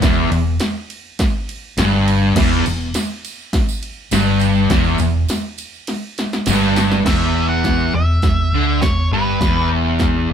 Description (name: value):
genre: garage rock duo or trio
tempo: 102 BPM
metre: 4/4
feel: straight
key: unclear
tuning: A4 = 439 Hz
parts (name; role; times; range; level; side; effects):
- fuzz guitar; riff; 0.0-10.3 s; E2 to D3; -16 LUFS; equal; distortion
- hollow-body short-scale fingered electric bass; bass; 0.0-10.3 s; E1 to D2; -20 LUFS; equal; none
- punchy analog drum machine; drums; 0.0-10.1 s; crash cymbal, hi-hat, kick drum, ride cymbal, snare drum; -20 LUFS; equal; none
- tambourine; percussion; 2.4-7.0 s; none; -33 LUFS; right 6 dB; none
- octave-fuzz lead guitar; melody; 7.1-9.7 s; B4 to F#5; -22 LUFS; right 2 dB; distortion
room: moderate stone room reverb, RT60 1.3 s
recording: band playing live in one room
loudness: -14 LUFS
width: side -8 dB against mid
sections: 0.0-7.1 A section; 7.1-10.3 B section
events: drum fill 5.9-7.1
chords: 0.0 Em; 7.1 N.C.